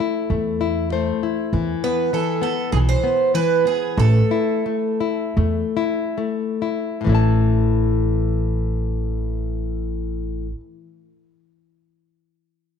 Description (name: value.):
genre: fado-style ballad.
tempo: 64-102 BPM.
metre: 4/4.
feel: rubato.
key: A minor.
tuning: A4 = 442 Hz.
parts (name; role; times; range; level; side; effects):
picked twelve-string acoustic guitar; melody; 0.0-6.2 s; G#4 to C5; -22 LUFS; right 8 dB; none.
nylon-string guitar; accompaniment; 0.0-10.6 s; A2 to A5; -22 LUFS; left 8 dB; none.
upright bass; bass; 0.3-10.5 s; A1 to E2; -20 LUFS; right 1 dB; none.
room: moderate echo chamber reverb, RT60 1.8 s, studio ambience.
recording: 1960s-style stereo with parts hard left and right.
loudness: -18 LUFS.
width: side -7 dB against mid.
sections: 0.0-1.5 A section; 1.5-7.1 B section; 7.1-10.7 C section.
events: nylon-string guitar fill 0.6-1.5; slowing down 1.5-7.1.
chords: 0.0 Am; 1.5 E5; 4.0 A5.